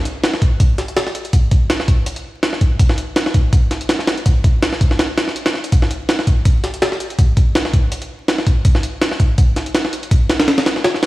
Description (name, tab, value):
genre	drum and bass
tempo	164 BPM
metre	4/4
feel	swing 55% on 16ths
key	none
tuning	none
part	jungle sampler-style drum kit	drums	0.1-11.1 s	hi-hat, kick drum, snare drum	-14 LUFS	equal	none
room	light reverb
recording	played on a big sound system in a bare room, stone room reverb, vinyl crackle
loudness	-14 LUFS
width	side -18 dB against mid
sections	0.0-11.1 A section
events	none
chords	none